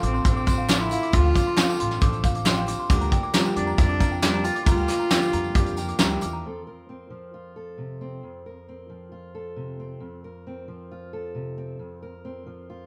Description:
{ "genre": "indie folk with a building arrangement", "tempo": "135 BPM", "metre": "4/4", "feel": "straight", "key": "F major", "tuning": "A4 = 440 Hz", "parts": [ { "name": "picked steel-string acoustic guitar", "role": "accompaniment", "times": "0.0-6.5 s", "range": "D3 to Bb4", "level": "-34 LUFS", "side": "equal", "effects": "none" }, { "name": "warm upright piano", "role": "accompaniment", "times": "0.0-6.5 s", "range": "D2 to A4", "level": "-37 LUFS", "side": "equal", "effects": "none" }, { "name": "worn celesta", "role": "arpeggios", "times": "0.0-6.4 s", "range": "F5 to D6", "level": "-32 LUFS", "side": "equal", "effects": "none" }, { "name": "upright bass", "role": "bass", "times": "0.0-6.4 s", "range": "A1 to F2", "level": "-30 LUFS", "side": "equal", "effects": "none" }, { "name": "soft brush drum kit", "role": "drums", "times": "0.0-6.3 s", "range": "hi-hat, kick drum, snare drum", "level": "-24 LUFS", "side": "equal", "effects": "none" }, { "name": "warm cello", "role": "melody", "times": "0.1-6.0 s", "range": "C4 to F4", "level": "-29 LUFS", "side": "equal", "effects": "none" }, { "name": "tambourine", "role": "percussion", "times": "0.1-6.3 s", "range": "none", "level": "-44 LUFS", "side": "equal", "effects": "none" }, { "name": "group handclap", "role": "percussion", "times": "0.7-6.1 s", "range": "none", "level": "-37 LUFS", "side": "equal", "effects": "none" }, { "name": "fingerpicked steel-string acoustic guitar", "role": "accompaniment", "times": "6.4-12.9 s", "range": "F2 to Bb4", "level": "-39 LUFS", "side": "equal", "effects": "none" } ], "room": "light reverb", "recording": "band playing live in one room", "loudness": "-22 LUFS", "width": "mono", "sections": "0.0-6.4 A section; 6.4-12.9 B section", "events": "none", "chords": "0.0 Dm7; 2.9 Bb6/D; 6.4 F" }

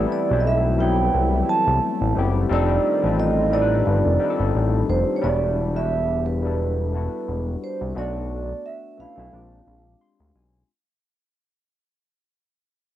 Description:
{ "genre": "R&B, neo-soul", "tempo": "88 BPM", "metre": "4/4", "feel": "swing 55% on 16ths", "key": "E minor", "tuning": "A4 = 438 Hz", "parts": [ { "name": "vibraphone with soft mallets", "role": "melody", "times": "0.0-10.3 s", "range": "B4 to A5", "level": "-24 LUFS", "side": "right 6 dB", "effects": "cassette tape, tape echo" }, { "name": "barky tine electric piano", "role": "accompaniment", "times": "0.0-10.7 s", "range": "F#3 to B#5", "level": "-26 LUFS", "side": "left 7 dB", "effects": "overdrive, wide subtle chorus, cassette tape" }, { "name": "warm analog pad", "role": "sustained chords", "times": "0.0-5.2 s", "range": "Eb3 to F4", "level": "-30 LUFS", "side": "equal", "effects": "chorus, cassette tape" }, { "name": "fat analog bass", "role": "bass", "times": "0.0-10.6 s", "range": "E1 to D2", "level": "-22 LUFS", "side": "equal", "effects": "none" } ], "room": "light reverb", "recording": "home recording on cassette", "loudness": "-19 LUFS", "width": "side -12 dB against mid", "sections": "0.0-5.2 A section; 5.2-10.7 B section", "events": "fade-out 5.2-10.7; tine electric piano fill 9.7-10.7", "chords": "0.0 Am7; 2.5 F13; 5.2 Em9; 7.9 Bm7; 9.3 A#13" }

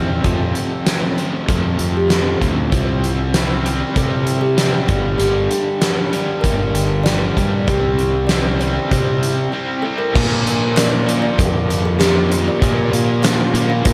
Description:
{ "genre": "classic rock", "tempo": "97 BPM", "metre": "4/4", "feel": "straight", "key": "unclear", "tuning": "A4 = 443 Hz", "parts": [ { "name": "picked old ladder-braced acoustic guitar", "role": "accompaniment", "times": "0.0-13.9 s", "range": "F2 to Bb4", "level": "-32 LUFS", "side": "equal", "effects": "none" }, { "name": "crunchy overdriven guitar", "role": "riff", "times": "0.0-13.9 s", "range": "F2 to C4", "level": "-27 LUFS", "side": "equal", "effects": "tremolo, slapback echo" }, { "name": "crunchy overdriven guitar", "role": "riff", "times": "0.0-13.9 s", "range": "F2 to C4", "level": "-29 LUFS", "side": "equal", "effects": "slapback echo" }, { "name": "fuzz fingered electric bass", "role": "bass", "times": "0.0-13.9 s", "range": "G1 to C3", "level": "-22 LUFS", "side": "equal", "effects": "overdrive" }, { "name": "kalimba", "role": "melody", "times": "0.2-13.9 s", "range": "E4 to F5", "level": "-25 LUFS", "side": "equal", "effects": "none" }, { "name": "big rock drum kit", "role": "drums", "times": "0.2-13.9 s", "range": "crash cymbal, hi-hat, kick drum, snare drum, tambourine", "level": "-21 LUFS", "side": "equal", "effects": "none" }, { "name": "group handclap", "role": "percussion", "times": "10.8-13.4 s", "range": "none", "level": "barely audible", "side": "none", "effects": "none" } ], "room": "moderate lush hall reverb, RT60 2.8 s", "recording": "big arena sound", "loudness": "-17 LUFS", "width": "mono", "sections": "0.0-10.1 A section; 10.1-13.9 B section", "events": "break 9.5-10.1", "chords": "0.2 F; 2.7 C; 4.9 Gm; 7.7 C; 10.1 Bb" }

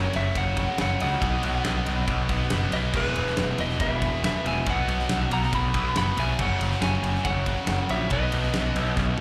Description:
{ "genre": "hard rock", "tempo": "139 BPM", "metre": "4/4", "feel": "straight", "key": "B major", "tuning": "A4 = 441 Hz", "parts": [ { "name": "lightly driven lead guitar", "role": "melody", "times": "0.0-9.2 s", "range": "B4 to B5", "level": "-32 LUFS", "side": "equal", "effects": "slapback echo" }, { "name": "lightly driven lead guitar", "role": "second line", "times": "0.0-9.2 s", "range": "G#4 to F#5", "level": "-40 LUFS", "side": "equal", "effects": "slapback echo" }, { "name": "distorted electric guitar", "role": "riff", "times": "0.0-9.2 s", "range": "E2 to B3", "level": "-35 LUFS", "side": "equal", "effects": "overdrive, slapback echo" }, { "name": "distorted electric guitar", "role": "riff", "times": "0.0-9.2 s", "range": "E2 to B3", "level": "-40 LUFS", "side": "equal", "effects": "none" }, { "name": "tight distorted guitar", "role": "riff", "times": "0.0-9.2 s", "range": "E2 to B3", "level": "-36 LUFS", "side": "equal", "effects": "distortion" }, { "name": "fuzz picked electric bass", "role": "bass", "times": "0.0-9.1 s", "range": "E1 to C#2", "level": "-29 LUFS", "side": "equal", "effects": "overdrive" }, { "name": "huge arena drum kit", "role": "drums", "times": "0.1-9.2 s", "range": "crash cymbal, kick drum, ride cymbal, snare drum, toms", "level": "-32 LUFS", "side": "equal", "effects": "none" } ], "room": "light reverb", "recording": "live gig heard through the venue's PA, club reverb", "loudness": "-25 LUFS", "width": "mono", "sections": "0.0-9.2 A section", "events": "drum fill 9.0", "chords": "0.0 F#5; 1.2 B; 2.9 E; 4.7 B; 6.4 F#5; 8.1 B" }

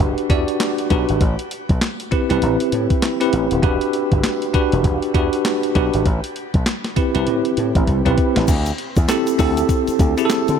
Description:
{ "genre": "R&B, new jack swing", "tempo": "99 BPM", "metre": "4/4", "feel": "swing 60% on 16ths", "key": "unclear", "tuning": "A4 = 441 Hz", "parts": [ { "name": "bell-like tine electric piano", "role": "accompaniment", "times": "0.0-10.6 s", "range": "C4 to D5", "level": "-19 LUFS", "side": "equal", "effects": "fast stereo tremolo, shimmer reverb" }, { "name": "slap bass with an envelope filter", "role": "bass", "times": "0.0-10.6 s", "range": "D#1 to D3", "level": "-21 LUFS", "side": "equal", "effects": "none" }, { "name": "clean 12-bit digital drum machine", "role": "drums", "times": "0.2-10.6 s", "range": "crash cymbal, handclaps, hi-hat, kick drum, snare drum", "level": "-20 LUFS", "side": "equal", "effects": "none" }, { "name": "egg shaker", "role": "percussion", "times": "8.5-10.6 s", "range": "none", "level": "-36 LUFS", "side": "left 10 dB", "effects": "none" } ], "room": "light reverb", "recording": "none", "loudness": "-16 LUFS", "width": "side -7 dB against mid", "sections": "0.0-8.5 A section; 8.5-10.6 B section", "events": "drum fill 7.9-8.5", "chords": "0.0 Em7; 1.2 Am7; 3.6 Em7; 6.1 Am7; 8.5 D9sus4" }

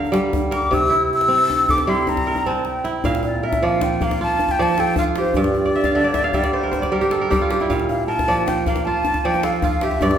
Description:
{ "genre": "west african traditional, West African string and xylophone music", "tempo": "103 BPM (dotted quarters)", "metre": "12/8", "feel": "straight", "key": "G dorian", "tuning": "A4 = 436 Hz", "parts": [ { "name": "kora", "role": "arpeggios", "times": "0.0-10.2 s", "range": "G2 to F5", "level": "-20 LUFS", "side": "right 2 dB", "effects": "none" }, { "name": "djembe", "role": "percussion", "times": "0.0-10.2 s", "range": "none", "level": "-26 LUFS", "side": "left 2 dB", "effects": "none" }, { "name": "breathy mellow silver concert flute", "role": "melody", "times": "0.5-10.2 s", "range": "C5 to E6", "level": "-20 LUFS", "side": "left 1 dB", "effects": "none" } ], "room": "wet large studio reverb, RT60 1.3 s", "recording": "band playing live in one room", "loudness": "-17 LUFS", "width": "side -9 dB against mid", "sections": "0.0-3.0 A section; 3.0-10.2 B section", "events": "flute solo 0.0-3.0; drum fill 2.5-3.0; kora fill 5.7-7.7", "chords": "0.0 Gm; 0.7 C; 3.0 Bb; 4.2 F; 5.4 G5; 7.7 Bb; 8.9 F" }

